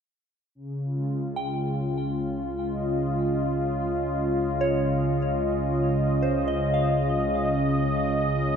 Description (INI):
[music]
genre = ambient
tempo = 74 BPM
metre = 3/4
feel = straight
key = Db lydian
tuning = A4 = 440 Hz
[part]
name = warm analog pad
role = sustained chords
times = 0.6-8.6 s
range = Db3 to Eb5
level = -25 LUFS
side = equal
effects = chorus
[part]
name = warm sub bass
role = bass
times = 0.6-8.6 s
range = Db2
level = -38 LUFS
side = equal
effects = none
[part]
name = analog drone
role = drone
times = 0.7-8.6 s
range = Db3 to Db4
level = -30 LUFS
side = equal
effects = chorus
[part]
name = soft synth bell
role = arpeggios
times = 1.4-8.6 s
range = C5 to G5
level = -32 LUFS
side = right 2 dB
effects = chorus, ping-pong delay
[sound]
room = wet concert hall reverb, RT60 2.1 s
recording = cassette tape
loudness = -23 LUFS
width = side -7 dB against mid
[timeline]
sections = 0.6-8.6 A section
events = fade-in on sub bass 0.6-8.6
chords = 0.6 Dbmaj9